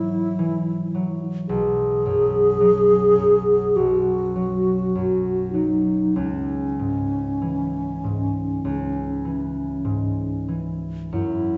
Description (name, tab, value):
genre	classical, impressionist duo for alto flute and harp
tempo	46-55 BPM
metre	4/4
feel	rubato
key	C# minor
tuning	A4 = 440 Hz
part	mellow hollow alto flute	melody	0.0-11.6 s	C#4 to G#4	-23 LUFS	equal	none
part	concert harp	accompaniment	0.0-11.6 s	B1 to F#3	-28 LUFS	equal	none
room	wet recital hall reverb, RT60 1.6 s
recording	heard from further back in the room, nothing above 7.8 kHz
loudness	-22 LUFS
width	mono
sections	0.0-11.1 A section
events	none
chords	0.0 Eadd9/G#; 1.5 B5; 6.2 C#m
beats	0.37 | 1.48 2.61 3.75 4.94 | 6.15 7.42 8.65 9.87 | 11.13